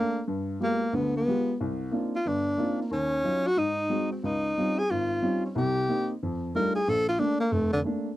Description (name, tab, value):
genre	jazz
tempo	182 BPM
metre	4/4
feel	swing 64% on 8ths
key	Bb major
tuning	A4 = 435 Hz
part	clear tenor saxophone	melody	0.0-7.8 s	D3 to Bb4	-26 LUFS	equal	none
part	warm baby grand piano	accompaniment	0.0-8.1 s	F1 to G4	-29 LUFS	equal	none
room	moderate booth ambience, RT60 0.2 s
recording	dry, close 1970s-style studio recording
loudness	-25 LUFS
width	side -15 dB against mid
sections	0.0-8.2 A section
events	none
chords	0.3 G7b9; 1.6 Cm11; 2.9 Ebm9; 3.6 Ab7; 4.2 Dbmaj9#11; 5.5 Cm7; 6.2 F13; 6.9 Bbmaj7